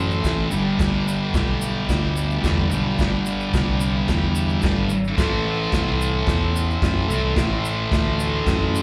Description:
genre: garage rock duo or trio.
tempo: 110 BPM.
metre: 4/4.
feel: straight.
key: unclear.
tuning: A4 = 437 Hz.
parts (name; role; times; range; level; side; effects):
overdriven combo organ; sustained chords; 0.0-8.8 s; D4 to C5; -33 LUFS; equal; none.
thick fuzz guitar; riff; 0.0-8.8 s; G2 to A3; -25 LUFS; equal; distortion.
fingered electric bass; bass; 0.0-8.8 s; G1 to F#2; -27 LUFS; equal; none.
tube shaker; percussion; 0.1-8.8 s; none; -43 LUFS; equal; none.
vintage drum kit; drums; 0.2-8.6 s; crash cymbal, kick drum, snare drum; -27 LUFS; equal; none.
room: light reverb.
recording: live gig heard through the venue's PA, club reverb.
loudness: -21 LUFS.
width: mono.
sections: 0.0-8.8 A section.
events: none.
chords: 0.0 Am; 0.5 G; 5.2 Am.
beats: 0.24 | 0.79 1.34 1.89 2.43 | 2.98 3.53 4.08 4.62 | 5.17 5.72 6.27 6.82 | 7.36 7.91 8.46.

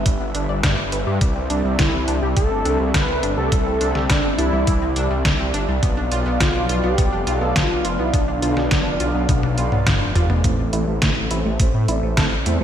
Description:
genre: synthwave.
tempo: 104 BPM.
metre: 4/4.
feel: straight.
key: A minor.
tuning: A4 = 440 Hz.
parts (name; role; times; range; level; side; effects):
chorused pulse-width pad; sustained chords; 0.0-12.6 s; G3 to F5; -27 LUFS; right 1 dB; sidechain pumping.
wide detuned saw bass; bass; 0.0-12.6 s; F1 to A2; -23 LUFS; equal; chorus, sidechain pumping.
analog pluck; arpeggios; 0.1-12.6 s; G3 to D5; -29 LUFS; equal; chorus, ping-pong delay.
detuned 8-bit digital drum machine; drums; 0.1-12.6 s; hi-hat, snare drum, toms; -22 LUFS; equal; studio reverb, gated reverb.
electronic kick drum; drums; 0.1-12.3 s; none; -21 LUFS; equal; studio reverb.
wide unison lead; melody; 1.8-9.8 s; D4 to B4; -24 LUFS; equal; ping-pong delay.
clean electric guitar; riff; 10.4-12.6 s; A3 to A4; -29 LUFS; right 2 dB; analog chorus, low-pass filter, ping-pong delay.
analog synth brass; stabs; 10.4-12.6 s; A2 to D5; -27 LUFS; right 3 dB; chorus, ping-pong delay.
room: light reverb.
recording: bright 1980s-style digital production.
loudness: -17 LUFS.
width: side -9 dB against mid.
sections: 0.0-10.4 A section; 10.4-12.6 B section.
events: drum fill 9.3-10.4; filter sweep on analog polysynth 10.4-12.6; filter sweep on clean electric guitar 10.4-12.6.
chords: 0.0 G; 1.2 Cadd9; 5.8 Bdim; 10.4 Am.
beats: 0.06 0.64 | 1.21 1.79 2.37 2.94 | 3.52 4.10 4.67 5.25 | 5.83 6.41 6.98 7.56 | 8.13 8.71 9.29 9.87 | 10.44 11.02 11.60 12.17.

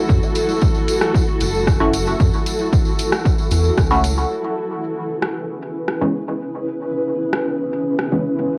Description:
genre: dub techno.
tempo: 114 BPM.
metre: 4/4.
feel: straight.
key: C# minor.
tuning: A4 = 440 Hz.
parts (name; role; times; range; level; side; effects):
granular cloud pad; sustained chords; 0.0-8.6 s; C#4 to B4; -24 LUFS; equal; built-in reverb, sidechain pumping, cassette tape.
round analog bass; bass; 0.1-4.2 s; F#1 to F#2; -23 LUFS; equal; sidechain pumping.
electronic kick drum; drums; 0.1-3.9 s; none; -20 LUFS; equal; overdrive, cassette tape.
tambourine; percussion; 0.1-4.3 s; none; -33 LUFS; equal; none.
punchy analog drum machine; drums; 0.4-8.1 s; hi-hat, rim click; -27 LUFS; equal; overdrive, cassette tape, dub echo.
filtered dub chord stab; stabs; 1.8-8.2 s; E3 to F#4; -25 LUFS; equal; chorus, phaser, sidechain pumping, cassette tape, dub echo.
metallic inharmonic drone; texture; 5.1-8.6 s; G#4; -41 LUFS; equal; chorus, built-in reverb, sidechain pumping, cassette tape.
room: moderate studio reverb, RT60 0.6 s.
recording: home recording on cassette.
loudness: -19 LUFS.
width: mono.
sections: 0.0-4.3 A section; 4.3-8.6 B section.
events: filter sweep on synth stab 0.0-4.3, 4.3-8.6; filter sweep on ambient pad 4.3-8.6.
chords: 0.0 F#m7; 4.3 C#m7.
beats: | 0.09 0.62 1.15 1.67 | 2.20 2.73 3.25 3.78 | 4.30 4.83 5.36 5.88 | 6.41 6.93 7.46 7.99 | 8.51.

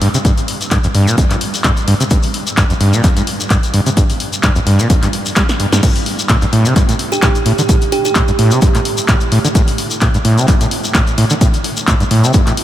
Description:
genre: acid house.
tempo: 129 BPM.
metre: 4/4.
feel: swing 55% on 16ths.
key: unclear.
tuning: A4 = 444 Hz.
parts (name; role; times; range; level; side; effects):
overdriven acid bass; riff; 0.0-12.5 s; F2 to G3; -15 LUFS; equal; vintage 12-bit sampler grit, sidechain pumping, ping-pong delay.
punchy analog drum machine; drums; 0.0-12.6 s; crash cymbal, handclaps, hi-hat, snare drum; -19 LUFS; left 1 dB; none.
shekere; percussion; 0.1-12.6 s; none; -24 LUFS; left 4 dB; none.
electronic kick drum; drums; 0.2-12.4 s; none; -14 LUFS; equal; overdrive.
kalimba; melody; 7.1-8.1 s; G4; -20 LUFS; right 6 dB; analog delay.
room: moderate cathedral reverb, RT60 5.1 s.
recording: dreamy mix soaked in reverb.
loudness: -11 LUFS.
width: side -12 dB against mid.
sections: 0.0-12.6 A section.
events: drum fill 5.4-5.8.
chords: none.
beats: | 0.25 0.71 1.18 1.64 | 2.11 2.57 3.04 3.50 | 3.97 4.43 4.90 5.37 | 5.83 6.29 6.76 7.22 | 7.69 8.15 8.62 9.09 | 9.55 10.02 10.48 10.95 | 11.41 11.88 12.34.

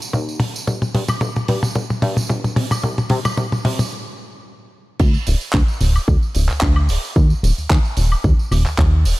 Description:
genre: nu-disco, nu disco.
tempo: 111 BPM.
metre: 4/4.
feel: swing 54% on 16ths.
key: unclear.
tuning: A4 = 438 Hz.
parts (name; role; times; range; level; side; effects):
chorused synth bass; bass; 0.0-9.1 s; D1 to C3; -18 LUFS; equal; high-pass filter.
damped 70s drum kit; drums; 0.0-9.2 s; crash cymbal, handclaps, hi-hat, tambourine, toms, woodblock; -21 LUFS; equal; studio reverb.
electronic kick drum; drums; 0.1-8.9 s; none; -17 LUFS; equal; high-pass filter on kick, studio reverb, high-pass filter on room.
room: little or no reverb.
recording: none.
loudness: -16 LUFS.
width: side -19 dB against mid.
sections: 0.0-5.0 A section; 5.0-9.2 B section.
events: build-up 0.0-5.0; drum fill 0.0-3.9; stop 3.9-5.0; drop 5.0-9.2.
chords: none.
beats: 0.14 | 0.68 1.22 1.76 2.30 | 2.84 3.38 3.92 4.46 | 5.00 5.54 6.08 6.62 | 7.16 7.70 8.24 8.79.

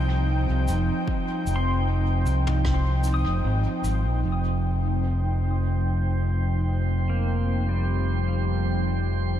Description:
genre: ambient dub.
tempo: 76 BPM.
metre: 4/4.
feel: swing 53% on 16ths.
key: unclear.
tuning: A4 = 440 Hz.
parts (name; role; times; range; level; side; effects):
airy breathy pad; sustained chords; 0.0-9.4 s; F3 to G5; -28 LUFS; right 1 dB; chorus.
pedal steel guitar; arpeggios; 0.0-9.4 s; G3 to Eb6; -35 LUFS; equal; analog chorus, low-pass filter, analog delay.
overdriven fingered electric bass; bass; 0.0-9.4 s; F1 to C2; -23 LUFS; equal; tube saturation.
vintage brush drum kit; drums; 0.7-4.0 s; rim click, shaker, toms; -41 LUFS; left 1 dB; dub echo.
electronic kick drum; drums; 1.1-2.8 s; none; -28 LUFS; equal; none.
drifting glass-harmonics texture; texture; 4.8-9.4 s; C4 to C5; -36 LUFS; right 4 dB; chorus, built-in reverb.
room: light reverb, small room ambience.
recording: none.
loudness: -22 LUFS.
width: side -11 dB against mid.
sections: 0.0-4.2 A section; 4.2-9.4 B section.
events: filter sweep on pedal steel guitar 4.2-9.4.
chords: 0.0 F7sus2; 4.2 Fsus2.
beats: 0.29 | 1.08 1.87 2.65 3.44 | 4.23 5.02 5.81 6.60 | 7.39 8.18 8.97.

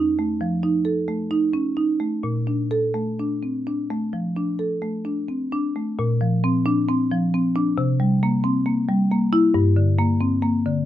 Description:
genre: classical, contemporary piece for solo marimba.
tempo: 63-68 BPM.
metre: 4/4.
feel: rubato.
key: Bb major.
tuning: A4 = 440 Hz.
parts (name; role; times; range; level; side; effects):
marimba with medium mallets; solo; 0.0-10.9 s; F2 to A4; -19 LUFS; equal; none.
room: little or no reverb.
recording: close, detailed microphones.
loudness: -19 LUFS.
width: side -12 dB against mid.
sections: 0.0-6.0 A section; 6.0-10.9 A section.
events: none.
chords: 0.0 F7; 2.2 Bbmaj7; 6.0 Bbadd9; 7.8 C7; 9.6 Gm.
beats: 0.41 1.30 | 2.23 3.18 4.12 5.05 | 5.98 6.89 7.78 8.67 | 9.55 10.44.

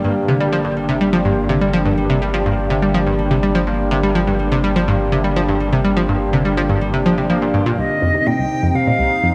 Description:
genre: ambient, sequencer-driven space music.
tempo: 124 BPM.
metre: 4/4.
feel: straight.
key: G minor.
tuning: A4 = 442 Hz.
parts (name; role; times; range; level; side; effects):
sweeping resonant pad; sustained chords; 0.0-9.3 s; C3 to G5; -23 LUFS; equal; chorus.
concert harp; arpeggios; 0.0-9.3 s; D3 to G4; -27 LUFS; equal; analog delay.
analog pluck; riff; 0.0-9.3 s; C2 to G3; -20 LUFS; equal; chorus, cassette tape, analog delay.
round analog bass; bass; 0.0-7.8 s; G1; -26 LUFS; equal; none.
bright wooden flute; melody; 7.8-9.3 s; Eb5 to G5; -21 LUFS; equal; analog delay.
room: moderate concert hall reverb, RT60 2.2 s.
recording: none.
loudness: -17 LUFS.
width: mono.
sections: 0.0-7.8 A section; 7.8-9.3 B section.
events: filter sweep on synth arpeggio sound 7.8-9.3.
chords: 0.0 Gm; 7.8 Cm.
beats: | 0.04 0.52 1.01 1.49 | 1.98 2.46 2.94 3.43 | 3.91 4.39 4.88 5.36 | 5.85 6.33 6.82 7.30 | 7.78 8.27 8.75 9.23.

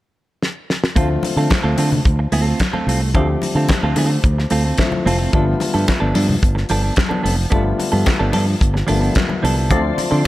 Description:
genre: disco.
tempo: 110 BPM.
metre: 4/4.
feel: straight.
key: D dorian.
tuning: A4 = 440 Hz.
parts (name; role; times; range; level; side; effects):
damped 70s drum kit; drums; 0.4-10.1 s; handclaps, hi-hat, kick drum, snare drum; -19 LUFS; equal; none.
clean electric guitar; accompaniment; 1.0-10.3 s; F3 to A4; -22 LUFS; right 3 dB; spring reverb.
dark grand piano; accompaniment; 1.0-10.3 s; D3 to G4; -23 LUFS; left 3 dB; none.
fingered electric bass; bass; 1.0-10.2 s; F1 to D3; -18 LUFS; equal; none.
congas; percussion; 1.2-10.1 s; none; -25 LUFS; left 4 dB; none.
percussive tonewheel organ; sustained chords; 9.7-10.3 s; F4 to C6; -22 LUFS; left 2 dB; chorus vibrato, slow rotary speaker.
room: little or no reverb.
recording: none.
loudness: -15 LUFS.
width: side -16 dB against mid.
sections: 1.0-10.3 A section.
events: drum fill 0.4-1.0.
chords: 0.0 N.C.; 1.0 Dm7; 5.3 G9; 9.7 Dm7.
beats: 0.41 | 0.96 1.51 2.05 2.60 | 3.15 3.69 4.24 4.79 | 5.33 5.88 6.43 6.97 | 7.52 8.07 8.61 9.16 | 9.70 10.25.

